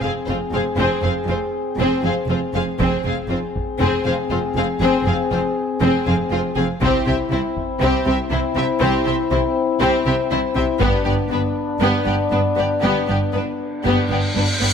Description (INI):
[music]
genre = cinematic, epic orchestral film score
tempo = 120 BPM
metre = 4/4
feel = straight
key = unclear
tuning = A4 = 440 Hz
[part]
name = warm symphonic violin section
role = melody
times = 0.0-14.7 s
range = G4 to F5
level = -28 LUFS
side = left 4 dB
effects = none
[part]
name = warm symphonic violin section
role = second line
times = 0.0-14.7 s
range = B3 to Ab4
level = -26 LUFS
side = left 3 dB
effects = none
[part]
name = warm symphonic viola section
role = accompaniment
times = 0.0-14.7 s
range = B3 to C4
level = -24 LUFS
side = right 1 dB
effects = none
[part]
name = mellow French horn section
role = sustained chords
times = 0.0-14.6 s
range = B3 to Ab4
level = -23 LUFS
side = left 5 dB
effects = none
[part]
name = clear symphonic double bass section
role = bass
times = 0.0-14.7 s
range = F1 to C2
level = -24 LUFS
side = right 2 dB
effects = none
[part]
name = rich symphonic cello section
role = bass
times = 0.0-14.7 s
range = F2 to C3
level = -26 LUFS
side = right 2 dB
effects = none
[part]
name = taiko ensemble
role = drums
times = 2.8-3.8, 6.8-11.8 s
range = none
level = -26 LUFS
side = equal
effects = none
[part]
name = cymbal swell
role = sound effects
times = 14.0-14.7 s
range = none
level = -23 LUFS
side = equal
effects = none
[sound]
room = moderate scoring stage reverb, RT60 1.8 s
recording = close, detailed microphones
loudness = -17 LUFS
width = side -7 dB against mid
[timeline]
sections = 0.0-14.7 A section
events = build-up 0.0-14.7; cymbal swell 14.0-14.7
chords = 0.0 Fm; 6.8 C; 10.8 G